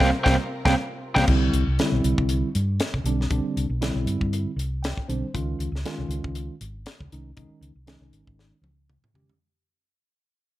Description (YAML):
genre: electric jazz fusion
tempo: 118 BPM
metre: 4/4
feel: swing 55% on 16ths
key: unclear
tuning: A4 = 440 Hz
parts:
  - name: biting lead guitar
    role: melody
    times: 0.0-1.2 s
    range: C5 to G5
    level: -24 LUFS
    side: equal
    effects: overdrive, slapback echo
  - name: tine electric piano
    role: accompaniment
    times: 0.0-9.3 s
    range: D3 to G5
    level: -27 LUFS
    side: right 1 dB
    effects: medium stereo tremolo
  - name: rich studio string section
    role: sustained chords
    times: 0.0-1.2 s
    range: C3 to Bb4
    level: -36 LUFS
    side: left 1 dB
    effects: none
  - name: hollow-body short-scale fingered electric bass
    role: bass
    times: 0.0-9.3 s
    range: Ab1 to Db3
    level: -26 LUFS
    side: equal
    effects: none
  - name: tight funk drum kit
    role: drums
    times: 0.0-9.4 s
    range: crash cymbal, hi-hat, kick drum, snare drum, toms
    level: -27 LUFS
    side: equal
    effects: none
room: moderate large studio reverb, RT60 1.3 s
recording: none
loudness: -22 LUFS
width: side -15 dB against mid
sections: 0.0-1.3 A section; 1.3-9.4 B section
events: band accent 0.0-1.3; drum fill 0.8-1.3, 8.4-9.4; fade-out 1.3-9.4; tine electric piano fill 4.6-5.3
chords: 0.0 C7sus4; 1.3 Cmaj9; 5.3 Dbmaj9